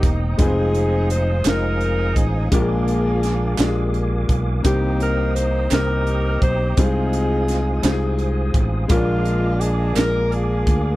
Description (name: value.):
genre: slow gospel.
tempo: 56 BPM (dotted quarters).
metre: 6/8.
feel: straight.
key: unclear.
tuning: A4 = 441 Hz.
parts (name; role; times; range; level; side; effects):
warm saxophone section; melody; 0.0-11.0 s; Ab3 to C5; -23 LUFS; equal; none.
clear grand piano; accompaniment; 0.0-11.0 s; Bb2 to Eb5; -24 LUFS; left 3 dB; none.
mellow tonewheel organ; sustained chords; 0.0-11.0 s; Bb4 to D#6; -32 LUFS; right 3 dB; fast rotary speaker, chorus vibrato.
fingered electric bass; bass; 0.0-11.0 s; Fb1 to D2; -21 LUFS; equal; none.
crisp fusion drum kit; drums; 0.0-10.8 s; hi-hat, kick drum, snare drum; -21 LUFS; right 1 dB; none.
group handclap; percussion; 1.4-10.3 s; none; -29 LUFS; right 12 dB; none.
room: little or no reverb.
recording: none.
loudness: -17 LUFS.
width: side -17 dB against mid.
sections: 0.0-11.0 A section.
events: none.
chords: 0.4 Fm7; 2.5 Bb7; 4.6 Cm7; 6.8 Fm7/C; 8.9 Bb7.